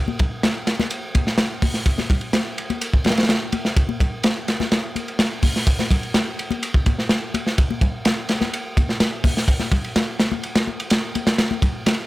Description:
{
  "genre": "breakbeat",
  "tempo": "126 BPM",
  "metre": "4/4",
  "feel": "straight",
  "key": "none",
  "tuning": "none",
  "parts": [
    { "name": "congas", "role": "percussion", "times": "0.1-12.0 s", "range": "none", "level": "-28 LUFS", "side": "left 5 dB", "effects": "none" },
    { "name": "crunchy breakbeat drum kit", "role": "drums", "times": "0.2-12.0 s", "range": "hi-hat, kick drum, ride cymbal, snare drum", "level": "-19 LUFS", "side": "equal", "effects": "none" }
  ],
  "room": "small room ambience",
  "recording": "none",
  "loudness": "-18 LUFS",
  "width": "side -17 dB against mid",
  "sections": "0.0-12.1 A section",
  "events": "none",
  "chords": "none"
}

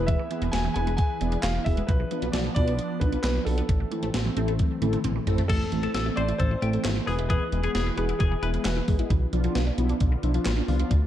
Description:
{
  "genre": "synth-pop",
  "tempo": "133 BPM",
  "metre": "4/4",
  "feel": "straight",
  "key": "A harmonic minor",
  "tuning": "A4 = 440 Hz",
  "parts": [
    { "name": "dark grand piano", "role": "melody", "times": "0.0-9.0 s", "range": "G#4 to G#5", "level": "-33 LUFS", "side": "left 1 dB", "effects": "tape echo" },
    { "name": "mellow synth brass", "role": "accompaniment", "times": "0.0-10.9 s", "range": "F3 to D5", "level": "-32 LUFS", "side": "equal", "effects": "chorus" },
    { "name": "phased analog pad", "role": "sustained chords", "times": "0.0-11.1 s", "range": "D3 to B4", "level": "-34 LUFS", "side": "equal", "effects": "phaser, chorus" },
    { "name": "resonant blip pluck", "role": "arpeggios", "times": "0.0-11.0 s", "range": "D3 to E4", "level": "-36 LUFS", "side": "right 1 dB", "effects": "phaser, tape echo" },
    { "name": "chorused synth bass", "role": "bass", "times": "0.0-11.1 s", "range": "E1 to D2", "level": "-27 LUFS", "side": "equal", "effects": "none" },
    { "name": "gated 80s digital drum machine", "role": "drums", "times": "0.1-11.0 s", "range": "crash cymbal, handclaps, hi-hat, kick drum, snare drum, toms", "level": "-27 LUFS", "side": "equal", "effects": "gated reverb, gated reverb snare" },
    { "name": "twelve-string electric guitar", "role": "second line", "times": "5.5-8.5 s", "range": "G4 to C5", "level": "-33 LUFS", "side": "left 4 dB", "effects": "spring reverb, tape echo" }
  ],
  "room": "light reverb, digital ambience",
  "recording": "dark, warm production",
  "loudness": "-23 LUFS",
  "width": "side -11 dB against mid",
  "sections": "0.0-5.5 A section; 5.5-11.1 B section",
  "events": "drum fill 4.6-5.5",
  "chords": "0.0 E; 1.9 Bdim; 3.7 Am; 7.1 E; 9.1 Bdim"
}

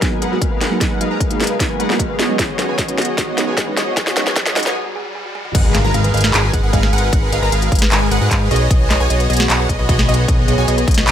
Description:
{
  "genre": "future bass",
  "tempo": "152 BPM",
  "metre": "4/4",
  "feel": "half-time",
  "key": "G# dorian",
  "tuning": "A4 = 437 Hz",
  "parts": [
    { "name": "glassy digital keys", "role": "accompaniment", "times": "0.0-4.7 s", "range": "F#3 to F#4", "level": "-25 LUFS", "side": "right 2 dB", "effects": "chorus, sidechain pumping, ping-pong delay" },
    { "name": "shimmering ambient pad", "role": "sustained chords", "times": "0.2-4.7 s", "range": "D#3 to F#4", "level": "-32 LUFS", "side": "equal", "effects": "none" },
    { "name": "thumb-piano-like synth pluck", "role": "arpeggios", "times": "0.0-11.1 s", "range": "F#4 to D#5", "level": "-29 LUFS", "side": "right 2 dB", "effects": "chorus, sidechain pumping, ping-pong delay" },
    { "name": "big bright polysynth", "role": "riff", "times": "0.0-11.1 s", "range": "G#3 to A#5", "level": "-20 LUFS", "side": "equal", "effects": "lush chorus, sidechain pumping, ping-pong delay" },
    { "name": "fat analog bass", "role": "bass", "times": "0.0-11.1 s", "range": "G#1 to G#2", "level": "-20 LUFS", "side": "equal", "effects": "sidechain pumping, high-pass filter" },
    { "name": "electronic kick drum", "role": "drums", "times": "0.0-11.0 s", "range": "none", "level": "-18 LUFS", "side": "equal", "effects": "overdrive" },
    { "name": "trap drum kit", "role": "drums", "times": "0.0-11.1 s", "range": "crash cymbal, handclaps, hi-hat, snare drum, toms", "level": "-19 LUFS", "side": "equal", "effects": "none" },
    { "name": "riser and impact", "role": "sound effects", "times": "1.9-7.1 s", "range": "none", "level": "-28 LUFS", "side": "equal", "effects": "none" },
    { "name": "wide unison pluck", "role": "arpeggios", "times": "5.5-11.1 s", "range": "D#5 to A#5", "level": "-26 LUFS", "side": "right 1 dB", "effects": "sidechain pumping" }
  ],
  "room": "light reverb",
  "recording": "high-pass filter",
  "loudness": "-14 LUFS",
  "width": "side -10 dB against mid",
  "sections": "0.0-5.5 A section; 5.5-11.1 B section",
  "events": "build-up 0.0-5.5; drum fill 0.0-4.8, 5.4; filter sweep on synth arpeggio sound 0.0-5.5; filter sweep 0.0-5.5; riser 1.9-5.5; break 4.8-5.5; drop 5.5-11.1; impact 5.5-7.1",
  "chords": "0.0 G#m7; 2.2 B6; 5.5 G#m7; 8.5 B6"
}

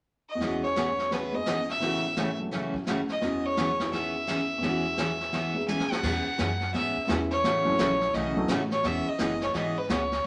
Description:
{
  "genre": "country, western swing",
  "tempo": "171 BPM",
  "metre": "4/4",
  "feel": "swing 63% on 8ths",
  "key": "E major",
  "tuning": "A4 = 440 Hz",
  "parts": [
    { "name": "clear fiddle", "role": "melody", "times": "0.3-10.3 s", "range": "B4 to G#5", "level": "-31 LUFS", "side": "equal", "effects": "none" },
    { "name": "warm upright piano", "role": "accompaniment", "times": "0.3-9.4 s", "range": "E2 to G#4", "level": "-36 LUFS", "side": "equal", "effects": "none" },
    { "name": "picked steel-string acoustic guitar", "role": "accompaniment", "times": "0.4-10.0 s", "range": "A2 to G#4", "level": "-34 LUFS", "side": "equal", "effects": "none" },
    { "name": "jazz brush drum kit", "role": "drums", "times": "0.4-10.3 s", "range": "brushed snare drum, crash cymbal, hi-hat, kick drum, snare drum, toms", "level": "-36 LUFS", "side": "equal", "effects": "none" },
    { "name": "upright bass", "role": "bass", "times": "6.0-10.3 s", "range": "E1 to G#2", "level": "-38 LUFS", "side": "equal", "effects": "none" }
  ],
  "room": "wet studio reverb, RT60 0.8 s",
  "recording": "none",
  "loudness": "-28 LUFS",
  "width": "mono",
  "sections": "0.4-6.0 A section; 6.0-10.3 B section",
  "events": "drum fill 5.7-6.0",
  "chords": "0.4 E6; 1.8 A6; 3.2 E6; 7.4 A6; 8.8 E6"
}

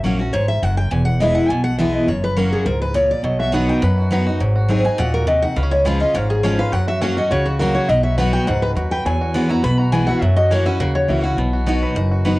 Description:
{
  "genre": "bluegrass",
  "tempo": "206 BPM",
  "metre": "4/4",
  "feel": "straight",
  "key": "B major",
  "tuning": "A4 = 440 Hz",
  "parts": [
    { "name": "picked steel-string acoustic guitar", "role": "accompaniment", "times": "0.0-12.4 s", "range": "E2 to G#4", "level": "-19 LUFS", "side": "equal", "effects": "cassette tape" },
    { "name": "upright bass", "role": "bass", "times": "0.0-12.4 s", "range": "E1 to F#2", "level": "-21 LUFS", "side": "equal", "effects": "none" },
    { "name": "picked steel-string acoustic guitar", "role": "melody", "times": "0.3-12.0 s", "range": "F#4 to B5", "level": "-21 LUFS", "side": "equal", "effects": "cassette tape" },
    { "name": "bluegrass banjo", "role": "melody", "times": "3.2-12.4 s", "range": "F#3 to B4", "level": "-26 LUFS", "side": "right 1 dB", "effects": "cassette tape" }
  ],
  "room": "light reverb",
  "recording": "home recording on cassette",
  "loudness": "-15 LUFS",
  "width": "side -19 dB against mid",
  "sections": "0.0-12.4 A section",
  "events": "steel-string acoustic guitar solo 0.0-12.4",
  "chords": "0.0 F#; 0.9 E; 2.1 F#; 3.2 B; 4.4 G#7; 5.6 C#; 6.7 F#; 7.9 B; 9.1 Eadd9; 10.2 F#7; 11.4 B"
}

